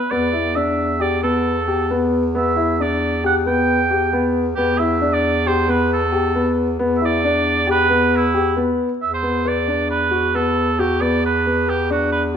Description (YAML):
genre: contemporary instrumental, chamber music in an uneven meter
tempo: 135 BPM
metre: 5/4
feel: straight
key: E minor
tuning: A4 = 439 Hz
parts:
  - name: clear oboe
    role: melody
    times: 0.0-12.2 s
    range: E4 to G5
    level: -20 LUFS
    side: right 4 dB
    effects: none
  - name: warm concert grand piano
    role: arpeggios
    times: 0.1-12.4 s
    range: B3 to B4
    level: -20 LUFS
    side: left 3 dB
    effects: none
  - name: clear bass clarinet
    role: bass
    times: 0.1-12.4 s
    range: E2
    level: -22 LUFS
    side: right 1 dB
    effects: none
room: light reverb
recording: minimal, uncompressed stereo recording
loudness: -16 LUFS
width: side -8 dB against mid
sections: 0.0-9.0 A section; 9.0-12.4 B section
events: none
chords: 0.0 Em7; 9.0 E7(no3)